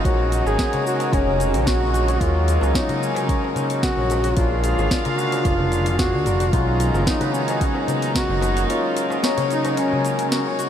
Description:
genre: organic downtempo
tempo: 111 BPM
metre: 4/4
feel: straight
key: unclear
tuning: A4 = 440 Hz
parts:
  - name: warm duduk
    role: melody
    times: 0.0-10.5 s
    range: Db4 to Ab4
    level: -24 LUFS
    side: equal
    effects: ping-pong delay
  - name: pedal harmonium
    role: accompaniment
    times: 0.0-10.7 s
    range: Gb3 to A#5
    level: -27 LUFS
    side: left 2 dB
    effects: sidechain pumping, ping-pong delay
  - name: rich chamber string section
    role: sustained chords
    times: 0.0-10.7 s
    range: Db3 to F5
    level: -28 LUFS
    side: right 2 dB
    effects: sidechain pumping
  - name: kora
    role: arpeggios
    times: 0.0-10.7 s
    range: Db4 to Db5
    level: -28 LUFS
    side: left 3 dB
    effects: ping-pong delay
  - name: smooth synth bass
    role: bass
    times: 0.0-8.7 s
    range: F1 to Eb2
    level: -22 LUFS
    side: equal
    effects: sidechain pumping
  - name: electronic kick drum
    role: drums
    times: 0.0-8.3 s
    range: none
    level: -23 LUFS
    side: equal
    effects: none
  - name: afro-pop drum kit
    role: drums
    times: 0.1-10.7 s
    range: hi-hat, shaker, snare drum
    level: -29 LUFS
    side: equal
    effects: none
  - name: darbuka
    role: percussion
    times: 0.3-10.0 s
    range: none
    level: -31 LUFS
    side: left 2 dB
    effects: none
room: moderate huge ambient reverb, RT60 7.3 s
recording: dreamy mix soaked in reverb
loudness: -18 LUFS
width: side -9 dB against mid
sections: 0.0-10.7 A section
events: none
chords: 0.0 Gb; 2.2 Ebm7; 4.4 Bb7; 6.5 Bmaj7; 8.7 Gb

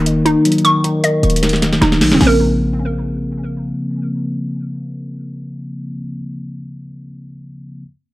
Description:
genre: hip hop, trap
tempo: 154 BPM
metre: 4/4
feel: half-time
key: Bb minor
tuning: A4 = 438 Hz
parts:
  - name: bell-like tine electric piano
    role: accompaniment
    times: 0.0-7.8 s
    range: Db3 to Eb4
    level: -18 LUFS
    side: left 1 dB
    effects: phaser
  - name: hollow square pluck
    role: arpeggios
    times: 0.0-6.0 s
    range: C4 to Db6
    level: -17 LUFS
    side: right 1 dB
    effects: chorus, tape echo
  - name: short 808-style bass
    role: bass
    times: 0.0-3.7 s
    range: Eb1 to Bb1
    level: -20 LUFS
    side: equal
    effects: none
  - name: booming analog drum machine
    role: drums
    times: 0.1-2.3 s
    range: hi-hat, snare drum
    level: -18 LUFS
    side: equal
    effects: none
room: little or no reverb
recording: dry, gritty hardware recording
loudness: -13 LUFS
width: side -18 dB against mid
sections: 0.0-2.2 A section; 2.2-5.3 B section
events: drum fill 1.4-2.2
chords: 0.0 Ebm7; 2.2 Bbmadd9

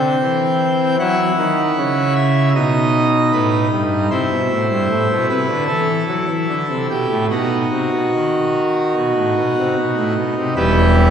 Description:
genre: classical, chorale-style piece for pipe organ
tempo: 76 BPM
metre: 4/4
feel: rubato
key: unclear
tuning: A4 = 438 Hz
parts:
  - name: pipe organ, full organ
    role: solo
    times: 0.0-11.1 s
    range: E1 to G5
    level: -14 LUFS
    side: equal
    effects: none
room: wet church reverb, RT60 2.8 s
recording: recorded in a church or concert hall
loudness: -15 LUFS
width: side -8 dB against mid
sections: 0.0-10.6 A section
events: none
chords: 0.0 Cadd9; 1.0 F#5; 2.6 B; 4.1 C; 7.3 B; 10.6 Em

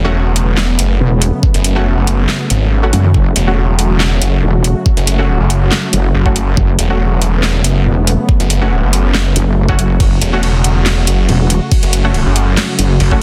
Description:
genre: heavy wobble dubstep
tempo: 140 BPM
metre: 4/4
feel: half-time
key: F# minor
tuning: A4 = 440 Hz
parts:
  - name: supersaw pad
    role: sustained chords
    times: 0.0-13.2 s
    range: C#3 to F#4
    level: -21 LUFS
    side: equal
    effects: sidechain pumping, low-pass filter
  - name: orchestra-hit-like synth stab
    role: stabs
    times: 0.0-13.2 s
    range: A3 to F#4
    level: -24 LUFS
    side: equal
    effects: built-in reverb, digital delay
  - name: snarling distorted saw bass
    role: bass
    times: 0.0-13.2 s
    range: E1 to G#1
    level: -16 LUFS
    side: equal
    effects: distortion, overdrive
  - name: dubstep drum kit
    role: drums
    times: 0.4-13.1 s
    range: handclaps, hi-hat, ride cymbal, snare drum, toms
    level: -20 LUFS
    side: equal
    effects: none
  - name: wobble bass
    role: bass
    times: 1.0-13.0 s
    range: E1 to F#2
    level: -14 LUFS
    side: equal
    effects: chorus, overdrive
  - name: electronic kick drum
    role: drums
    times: 1.4-13.2 s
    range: none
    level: -14 LUFS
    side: equal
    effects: none
room: little or no reverb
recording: dense, heavily limited modern master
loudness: -13 LUFS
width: mono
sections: 0.0-13.2 A section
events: kick drops out 2.7-3.1; drum fill 2.9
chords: 0.0 F#m

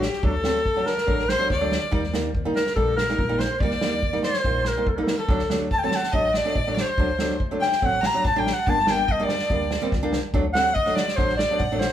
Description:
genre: klezmer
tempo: 143 BPM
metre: 4/4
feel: straight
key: D phrygian dominant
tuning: A4 = 444 Hz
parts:
  - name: mellow clarinet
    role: melody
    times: 0.0-11.9 s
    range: G4 to Bb5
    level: -24 LUFS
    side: equal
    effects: tape echo
  - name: bright violin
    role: second line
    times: 0.0-11.9 s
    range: G4 to Bb5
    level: -30 LUFS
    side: left 2 dB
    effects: none
  - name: flamenco guitar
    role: accompaniment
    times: 0.0-11.9 s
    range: F#3 to Eb4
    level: -27 LUFS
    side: right 1 dB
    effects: none
  - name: upright bass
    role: bass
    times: 0.0-11.9 s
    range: G1 to Eb2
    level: -29 LUFS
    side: equal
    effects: none
  - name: unplugged drum kit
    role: drums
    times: 0.0-11.9 s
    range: kick drum, snare drum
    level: -27 LUFS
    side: equal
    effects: none
room: wet small room reverb, RT60 0.5 s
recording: heard from further back in the room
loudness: -20 LUFS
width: side -10 dB against mid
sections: 0.0-11.9 A section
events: clarinet solo 0.0-11.9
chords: 0.0 D; 1.9 Eb; 5.3 D; 8.7 Gm; 10.3 D

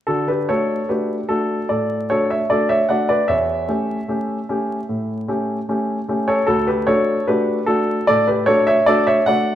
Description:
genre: classical-period piano sonatina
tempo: 75 BPM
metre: 4/4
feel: straight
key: D major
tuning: A4 = 440 Hz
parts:
  - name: clear baby grand piano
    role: solo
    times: 0.1-9.6 s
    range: D2 to F#5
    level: -16 LUFS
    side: equal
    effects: none
room: moderate recital hall reverb, RT60 1.6 s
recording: vinyl crackle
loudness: -16 LUFS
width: side -11 dB against mid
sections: 0.1-9.6 A section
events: none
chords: 0.1 D; 3.3 A7/E; 6.5 D

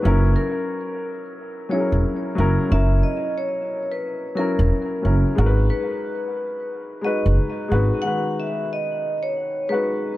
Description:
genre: hip hop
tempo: 90 BPM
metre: 4/4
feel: swing 62% on 16ths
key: unclear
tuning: A4 = 439 Hz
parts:
  - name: dark concert grand piano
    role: accompaniment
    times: 0.0-10.2 s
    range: D#3 to B4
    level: -24 LUFS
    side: left 2 dB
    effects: high-pass filter, low-pass filter, dub echo
  - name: upright bass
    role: bass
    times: 0.1-7.9 s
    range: E1 to G#1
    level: -18 LUFS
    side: equal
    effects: none
  - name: vibraphone with medium hard mallets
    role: melody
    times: 0.4-10.2 s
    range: A#4 to F#5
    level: -27 LUFS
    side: equal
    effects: high-pass filter, low-pass filter, dub echo
room: little or no reverb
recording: echo-heavy mix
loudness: -19 LUFS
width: side -16 dB against mid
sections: 0.0-10.2 A section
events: none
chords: 0.0 F#7; 5.4 G#m7

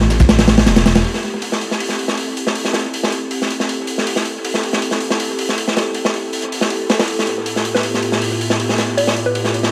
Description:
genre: drum and bass, jungle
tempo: 159 BPM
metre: 4/4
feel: straight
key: A minor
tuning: A4 = 440 Hz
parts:
  - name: airy breathy pad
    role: sustained chords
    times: 0.0-9.7 s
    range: A2 to A4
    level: -25 LUFS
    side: equal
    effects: chorus
  - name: dark detuned saw bass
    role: bass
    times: 0.0-1.0 s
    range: E1 to A1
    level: -19 LUFS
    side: equal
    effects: none
  - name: crunchy breakbeat drum kit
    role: drums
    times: 0.0-9.7 s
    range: hi-hat, kick drum, snare drum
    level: -19 LUFS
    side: equal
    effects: high-pass filter on kick, high-pass filter on hats, high-pass filter on snare, high-pass filter on room, dub echo
  - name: electronic snare drum and tambourine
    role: drums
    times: 0.1-1.0 s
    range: none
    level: -34 LUFS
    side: equal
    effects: none
  - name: hollow square pluck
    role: melody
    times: 7.7-9.5 s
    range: B4 to D5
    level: -24 LUFS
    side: equal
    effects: chorus, dub echo
room: moderate plate reverb, RT60 1.6 s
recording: echo-heavy mix, vinyl crackle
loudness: -18 LUFS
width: mono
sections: 0.0-1.0 A section; 1.0-9.7 B section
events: drop 0.0-1.0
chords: 0.0 G13; 1.0 Am7; 7.1 G13/A

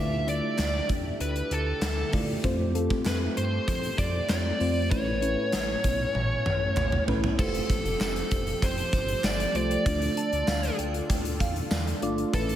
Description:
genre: 1980s-style pop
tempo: 97 BPM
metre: 4/4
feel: straight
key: D dorian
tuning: A4 = 439 Hz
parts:
  - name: fuzz lead guitar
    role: melody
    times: 0.0-12.6 s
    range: A4 to E5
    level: -30 LUFS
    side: equal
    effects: distortion, slapback echo, tape echo
  - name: mellow FM electric piano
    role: accompaniment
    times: 0.0-12.6 s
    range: A2 to D5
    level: -32 LUFS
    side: left 1 dB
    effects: chorus, phaser
  - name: phased analog pad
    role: sustained chords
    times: 0.0-12.6 s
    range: C#3 to E5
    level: -37 LUFS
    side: equal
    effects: phaser, chorus
  - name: chorused synth bass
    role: bass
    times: 0.0-12.6 s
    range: F1 to G2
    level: -31 LUFS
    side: equal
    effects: none
  - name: gated 80s drum kit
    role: drums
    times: 0.3-12.6 s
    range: crash cymbal, hi-hat, kick drum, snare drum, tambourine, toms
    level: -29 LUFS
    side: equal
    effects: none
  - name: group handclap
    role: percussion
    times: 0.6-11.9 s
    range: none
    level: -46 LUFS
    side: right 3 dB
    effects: none
  - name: glassy synth bell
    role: second line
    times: 10.2-12.1 s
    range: D5 to A5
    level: -38 LUFS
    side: right 4 dB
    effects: chorus, tremolo, slapback echo, tape echo
room: wet lush hall reverb, RT60 1.9 s, small room ambience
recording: big arena sound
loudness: -24 LUFS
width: side -11 dB against mid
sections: 0.0-7.4 A section; 7.4-12.6 B section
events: drum fill 6.2-7.4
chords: 0.0 Dmadd9; 2.4 F; 4.9 Aadd9; 7.4 Fadd9; 9.9 Dm

